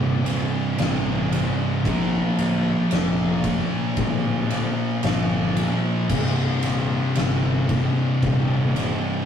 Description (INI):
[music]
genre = stoner and doom metal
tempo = 56 BPM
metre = 4/4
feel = straight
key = unclear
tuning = A4 = 440 Hz
[part]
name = thick fuzz guitar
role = riff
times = 0.0-9.3 s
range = C2 to Bb3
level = -27 LUFS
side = left 4 dB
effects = distortion
[part]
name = thick fuzz guitar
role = riff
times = 0.0-9.3 s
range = C2 to Bb3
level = -24 LUFS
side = right 2 dB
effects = distortion
[part]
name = thick fuzz guitar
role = riff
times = 0.0-9.3 s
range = C2 to Bb3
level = -28 LUFS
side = left 1 dB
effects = distortion
[part]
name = fuzz fingered electric bass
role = bass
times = 0.0-8.9 s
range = C1 to Bb1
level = -29 LUFS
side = left 1 dB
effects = overdrive
[part]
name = oversized low-tuned drum kit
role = drums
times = 0.3-9.0 s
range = crash cymbal, kick drum, ride cymbal, snare drum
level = -26 LUFS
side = equal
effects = none
[sound]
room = wet booth ambience, RT60 0.2 s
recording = rough rehearsal-room recording, warm saturation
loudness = -20 LUFS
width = side -8 dB against mid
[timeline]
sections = 0.0-9.3 A section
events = none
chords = 0.0 Cm; 1.8 Bb; 6.1 Cm